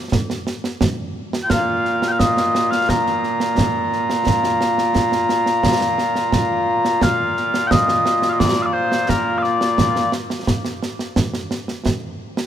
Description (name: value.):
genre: scottish traditional, Scottish pipe music.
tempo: 87 BPM.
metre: 4/4.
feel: straight.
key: Bb major.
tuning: A4 = 440 Hz.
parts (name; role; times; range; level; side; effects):
concert snare drum and concert bass drum; drums; 0.1-12.5 s; none; -21 LUFS; right 2 dB; none.
mellow small bagpipes; melody; 1.4-10.1 s; Bb2 to Bb5; -18 LUFS; left 1 dB; none.
room: light reverb.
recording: minimal, uncompressed stereo recording.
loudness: -16 LUFS.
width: side -10 dB against mid.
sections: 0.0-7.0 A section; 7.0-12.5 A section.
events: none.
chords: none.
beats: 0.12 0.81 | 1.50 2.19 2.88 3.57 | 4.26 4.95 5.64 6.33 | 7.02 7.71 8.40 9.09 | 9.78 10.46 11.15 11.85.